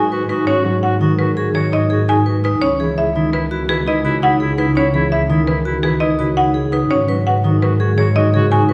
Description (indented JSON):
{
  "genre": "classical, minimalist pattern music",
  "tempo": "168 BPM",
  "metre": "6/4",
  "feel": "straight",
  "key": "C# minor",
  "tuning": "A4 = 440 Hz",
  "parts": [
    { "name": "buzzing marimba with hard mallets", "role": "melody", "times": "0.0-8.7 s", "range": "G#4 to G#5", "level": "-23 LUFS", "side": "equal", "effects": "none" },
    { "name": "clear clarinet", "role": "second line", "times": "0.0-8.7 s", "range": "E4 to F#4", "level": "-26 LUFS", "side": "equal", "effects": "none" },
    { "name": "concert harp", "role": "accompaniment", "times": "0.0-8.7 s", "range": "C#3 to F#3", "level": "-24 LUFS", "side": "equal", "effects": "none" },
    { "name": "vibraphone with medium hard mallets", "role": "arpeggios", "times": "0.0-8.7 s", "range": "C#4 to C#5", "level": "-22 LUFS", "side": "equal", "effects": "none" },
    { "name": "rich symphonic double bass section", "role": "bass", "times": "0.0-8.7 s", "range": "C#2 to G#2", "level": "-22 LUFS", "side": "equal", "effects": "none" }
  ],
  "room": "wet recital hall reverb, RT60 1.9 s",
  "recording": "none",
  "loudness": "-16 LUFS",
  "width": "mono",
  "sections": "0.0-8.7 A section",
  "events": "none",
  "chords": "0.0 G#7sus4; 2.6 C#m11; 6.9 G#7sus4",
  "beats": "0.12 | 0.48 0.83 1.19 1.55 1.91 2.26 | 2.62 2.98 3.33 3.69 4.05 4.41 | 4.76 5.12 5.48 5.83 6.19 6.55 | 6.91 7.26 7.62 7.98 8.34 8.69"
}